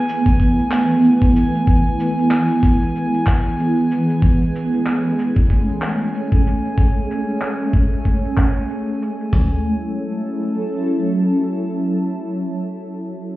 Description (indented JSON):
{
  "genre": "sunset chillout",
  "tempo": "94 BPM",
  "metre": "4/4",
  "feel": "swing 57% on 16ths",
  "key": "F# minor",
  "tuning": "A4 = 440 Hz",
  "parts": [
    { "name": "shimmering ambient pad", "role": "sustained chords", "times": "0.0-12.6 s", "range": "E3 to A4", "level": "-18 LUFS", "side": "right 1 dB", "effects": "chorus, built-in reverb, phaser" },
    { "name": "drifting glass-harmonics texture", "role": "texture", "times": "0.0-9.3 s", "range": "G#5", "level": "-28 LUFS", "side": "equal", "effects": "chorus, built-in reverb" },
    { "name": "electronic shaker and handclaps", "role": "drums", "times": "0.1-9.3 s", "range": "none", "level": "-29 LUFS", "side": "equal", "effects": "low-pass filter on perc, low-pass filter on snare, low-pass filter on room" },
    { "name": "dusty soul sampler-style drum kit", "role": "drums", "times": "0.3-9.5 s", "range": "hi-hat, kick drum, toms", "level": "-15 LUFS", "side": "equal", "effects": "none" }
  ],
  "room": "wet lush hall reverb, RT60 2.6 s",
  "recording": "heard muffled through a wall, stone room reverb, EQ",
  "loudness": "-16 LUFS",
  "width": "side -17 dB against mid",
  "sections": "0.0-9.3 A section; 9.3-11.9 B section",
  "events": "filter sweep on drum 0.0-9.3",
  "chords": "0.0 B7sus4; 4.2 Amaj7; 9.3 F#m7"
}